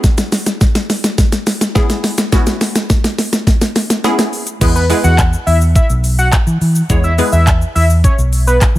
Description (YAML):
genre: dance-pop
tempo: 105 BPM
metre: 4/4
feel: straight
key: E major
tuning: A4 = 439 Hz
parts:
  - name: wavetable chord stab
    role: accompaniment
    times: 0.0-8.0 s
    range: G#3 to C#5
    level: -19 LUFS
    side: equal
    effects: phaser, sidechain pumping
  - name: pop drum kit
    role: drums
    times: 0.0-8.8 s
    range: crash cymbal, handclaps, hi-hat, kick drum, shaker, snare drum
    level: -13 LUFS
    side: equal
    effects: none
  - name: vintage muted fingered electric bass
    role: bass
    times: 4.6-8.8 s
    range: B1 to E3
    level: -12 LUFS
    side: equal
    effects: sidechain pumping
  - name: fat analog lead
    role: melody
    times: 4.8-8.6 s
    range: B4 to F#5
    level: -18 LUFS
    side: left 1 dB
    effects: sidechain pumping
room: little or no reverb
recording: none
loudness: -11 LUFS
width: side -16 dB against mid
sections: 0.0-4.6 A section; 4.6-8.8 B section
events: build-up 0.0-4.6; drum fill 0.0-4.6; drop 4.6-8.8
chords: 0.0 C#m7; 4.6 E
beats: | 0.04 0.61 1.18 1.75 | 2.33 2.90 3.47 4.04 | 4.61 5.18 5.75 6.33 | 6.90 7.47 8.04 8.61